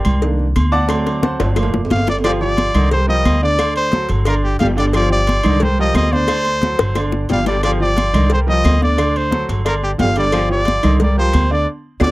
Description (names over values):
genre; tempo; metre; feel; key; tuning
latin, salsa; 178 BPM; 4/4; straight; G minor; A4 = 440 Hz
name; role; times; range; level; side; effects
clear grand piano; accompaniment; 0.0-12.1 s; D3 to D6; -22 LUFS; right 2 dB; none
agogo bells and timbales; percussion; 0.0-12.1 s; none; -26 LUFS; right 3 dB; none
claves; percussion; 0.0-12.1 s; none; -31 LUFS; left 6 dB; none
upright bass; bass; 0.1-12.1 s; F1 to D2; -18 LUFS; equal; none
congas; percussion; 0.1-12.1 s; none; -20 LUFS; left 1 dB; none
cowbell and bongos; percussion; 0.2-12.1 s; none; -23 LUFS; left 4 dB; none
clear trumpet; melody; 1.9-12.1 s; G4 to F5; -19 LUFS; equal; none
bright trombone section; second line; 2.2-11.4 s; D3 to G3; -23 LUFS; left 3 dB; none
room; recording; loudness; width
little or no reverb; dry, close 1970s-style studio recording; -14 LUFS; side -18 dB against mid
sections
0.0-2.2 A section; 2.2-12.1 B section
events
grand piano solo 0.0-2.2; drum fill 0.9-2.2, 6.8-7.6, 11.7-12.1; band accent 11.7-12.1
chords
0.2 Cm7; 0.9 D7; 1.6 Gm7; 2.2 G5; 2.9 Cm7; 3.6 D7; 4.3 G5; 5.6 C5; 6.3 D7; 7.0 G5; 8.3 Cm7; 9.0 D7; 9.7 G5; 11.0 C5